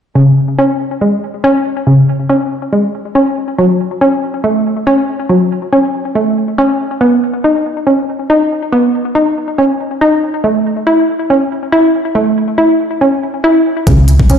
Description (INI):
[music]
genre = hip hop, trap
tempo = 140 BPM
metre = 4/4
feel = half-time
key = C# minor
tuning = A4 = 437 Hz
[part]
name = hollow square pluck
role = arpeggios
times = 0.2-14.4 s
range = C#3 to E4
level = -10 LUFS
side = equal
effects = chorus, ping-pong delay
[part]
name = warm 808-style bass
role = bass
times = 13.9-14.4 s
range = B1 to C#2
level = -9 LUFS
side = equal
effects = none
[part]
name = trap drum kit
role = drums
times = 13.9-14.4 s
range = hi-hat, kick drum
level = -12 LUFS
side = equal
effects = overdrive
[sound]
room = moderate digital room reverb, RT60 1.2 s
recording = played on a big sound system in a bare room, stone room reverb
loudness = -10 LUFS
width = side -8 dB against mid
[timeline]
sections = 0.2-13.9 A section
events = none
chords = 0.2 C#5; 3.6 F#m; 7.0 Badd9; 10.4 A; 13.9 C#5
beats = | 0.15 0.58 1.01 1.44 | 1.87 2.30 2.73 3.15 | 3.58 4.01 4.44 4.87 | 5.30 5.72 6.15 6.58 | 7.01 7.44 7.87 8.30 | 8.72 9.15 9.58 10.01 | 10.44 10.87 11.30 11.72 | 12.15 12.58 13.01 13.44 | 13.87 14.30